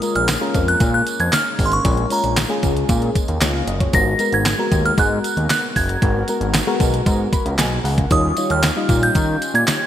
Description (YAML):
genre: early-eighties boogie funk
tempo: 115 BPM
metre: 4/4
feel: straight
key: G# dorian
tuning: A4 = 441 Hz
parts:
  - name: delicate synth tine bell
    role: melody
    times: 0.0-9.9 s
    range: A#5 to A#6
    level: -21 LUFS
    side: right 2 dB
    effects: chorus, digital delay
  - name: FM electric piano with soft pad layer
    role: accompaniment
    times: 0.0-9.4 s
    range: G3 to B5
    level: -23 LUFS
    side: left 2 dB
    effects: chorus
  - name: chorused pulse-width pad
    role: sustained chords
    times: 0.0-9.9 s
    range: D#3 to A#4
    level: -30 LUFS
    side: equal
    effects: none
  - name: detuned 8-bit digital drum machine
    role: drums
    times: 0.0-9.8 s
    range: handclaps, hi-hat, kick drum, snare drum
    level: -20 LUFS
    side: equal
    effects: overdrive, gated reverb
  - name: tambourine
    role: percussion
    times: 0.0-9.8 s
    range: none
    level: -32 LUFS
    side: right 7 dB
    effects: none
  - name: fat analog bass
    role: bass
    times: 0.2-9.6 s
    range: F#1 to D#3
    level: -21 LUFS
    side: equal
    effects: none
room: light reverb, digital ambience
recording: bright 1980s-style digital production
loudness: -16 LUFS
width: side -11 dB against mid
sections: 0.0-9.9 A section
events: FM electric piano fill 7.1-8.1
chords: 0.0 A#m7; 3.9 G#m9; 8.1 D#9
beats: 0.28 0.80 1.33 | 1.85 2.37 2.89 3.41 | 3.94 4.46 4.98 5.50 | 6.02 6.54 7.07 7.59 | 8.11 8.63 9.15 9.67